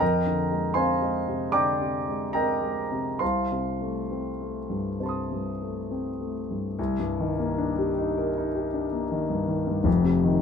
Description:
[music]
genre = classical, impressionist solo piano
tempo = 66-82 BPM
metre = 4/4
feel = rubato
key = unclear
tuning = A4 = 442 Hz
[part]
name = warm concert grand piano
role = solo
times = 0.0-10.4 s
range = F1 to Eb6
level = -24 LUFS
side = left 1 dB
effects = none
[sound]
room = light reverb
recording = minimal, uncompressed stereo recording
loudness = -24 LUFS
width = side -6 dB against mid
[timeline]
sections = 0.0-6.8 A section; 6.8-10.4 A section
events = none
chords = 0.0 Fm6; 3.2 Cm6; 6.8 Cm9; 9.9 F7(no3)

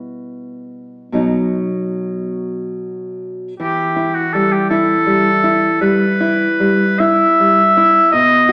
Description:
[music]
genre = romantic duo for oboe and classical guitar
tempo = 48-56 BPM (dotted quarters)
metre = 12/8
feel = rubato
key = E minor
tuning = A4 = 440 Hz
[part]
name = nylon-string guitar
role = accompaniment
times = 0.0-8.5 s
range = B2 to B4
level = -19 LUFS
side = equal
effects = none
[part]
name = clear oboe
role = melody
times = 3.6-8.5 s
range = F#4 to E5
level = -15 LUFS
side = equal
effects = none
[sound]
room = wet recital hall reverb, RT60 1.7 s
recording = recorded in a church or concert hall, small speaker sound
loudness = -15 LUFS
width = mono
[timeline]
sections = 0.0-3.6 A section; 3.6-8.5 B section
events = none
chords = 0.0 Em/B; 1.2 B; 3.6 Em

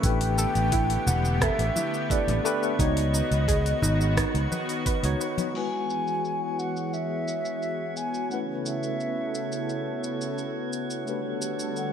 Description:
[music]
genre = sunset chillout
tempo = 87 BPM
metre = 4/4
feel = straight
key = F# dorian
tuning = A4 = 440 Hz
[part]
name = mellow baroque flute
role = melody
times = 0.0-11.9 s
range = D5 to G#5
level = -31 LUFS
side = left 1 dB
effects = ping-pong delay
[part]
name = tine electric piano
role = accompaniment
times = 0.0-11.9 s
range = G#3 to C#5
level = -32 LUFS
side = moving between left 4 dB and right 4 dB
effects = medium stereo tremolo, auto-pan
[part]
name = lush unison pad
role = sustained chords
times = 0.0-11.9 s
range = C#3 to A4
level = -32 LUFS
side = equal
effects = chorus
[part]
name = soft round pluck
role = arpeggios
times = 0.0-5.4 s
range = D#4 to D#5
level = -33 LUFS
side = right 5 dB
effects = chorus, ping-pong delay
[part]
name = fingered electric bass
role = bass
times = 0.0-5.1 s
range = E1 to C#2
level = -25 LUFS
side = equal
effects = none
[part]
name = electronic kick drum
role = drums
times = 0.0-5.0 s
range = none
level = -27 LUFS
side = equal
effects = none
[part]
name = smooth R&B drum kit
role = drums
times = 0.0-11.9 s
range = crash cymbal, hi-hat, rim click, shaker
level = -33 LUFS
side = left 1 dB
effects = low-pass filter on hats, low-pass filter on perc, low-pass filter on snare, low-pass filter on cymbals, low-pass filter on room, gated reverb
[part]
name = drifting glass-harmonics texture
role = texture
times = 0.0-11.9 s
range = B3 to C#6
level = -37 LUFS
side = right 1 dB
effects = chorus, built-in reverb
[part]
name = congas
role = percussion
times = 1.1-5.5 s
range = none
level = -33 LUFS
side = left 2 dB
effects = none
[sound]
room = moderate plate reverb, RT60 2.1 s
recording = bright 1980s-style digital production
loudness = -24 LUFS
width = side -8 dB against mid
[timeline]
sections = 0.0-5.6 A section; 5.6-11.9 B section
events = none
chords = 0.0 A9sus4; 2.8 C#9sus4; 5.6 F#9sus4; 8.3 B9sus4; 11.1 A9sus4

